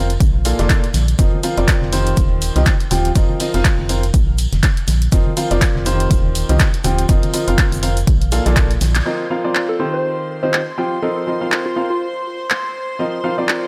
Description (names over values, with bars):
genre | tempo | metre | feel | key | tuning
piano house | 122 BPM | 4/4 | swing 57% on 16ths | unclear | A4 = 440 Hz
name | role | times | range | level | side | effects
clear upright piano | riff | 0.0-13.7 s | Bb2 to G5 | -23 LUFS | equal | vintage 12-bit sampler grit, sidechain pumping, tape echo
organ-like FM bass | bass | 0.0-9.0 s | Eb1 to C2 | -20 LUFS | equal | sidechain pumping
punchy analog drum machine | drums | 0.1-13.6 s | handclaps, hi-hat | -24 LUFS | equal | overdrive
tambourine and congas | percussion | 0.1-9.0 s | none | -30 LUFS | equal | none
electronic kick drum | drums | 0.2-8.7 s | none | -18 LUFS | equal | overdrive
warm soul drum kit | drums | 0.2-9.1 s | hi-hat, shaker, snare drum | -36 LUFS | equal | none
warm studio violin section | sustained chords | 9.1-13.7 s | C5 to C6 | -29 LUFS | equal | sidechain pumping
soft struck synth lead | melody | 9.7-12.1 s | F4 to C5 | -26 LUFS | equal | chorus, tape echo
room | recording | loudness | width
light reverb | none | -17 LUFS | mono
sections
0.0-9.1 A section; 9.1-13.7 B section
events
drum fill 8.6-9.1; band accent 8.9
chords
0.2 Bbmaj7; 1.2 F7sus4; 2.2 Eb69; 3.2 F7sus4; 4.1 Bb5; 5.1 F7sus4; 6.1 Eb69; 7.1 F7sus4; 8.1 Bbmaj7; 9.1 F7sus4; 10.0 Eb69; 11.0 F7sus4; 12.0 N.C.; 13.0 F7sus4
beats
0.20 0.70 | 1.19 1.68 2.17 2.66 | 3.16 3.65 4.14 4.63 | 5.12 5.62 6.11 6.60 | 7.09 7.58 8.07 8.57 | 9.06 9.55 10.04 10.53 | 11.03 11.52 12.01 12.50 | 12.99 13.48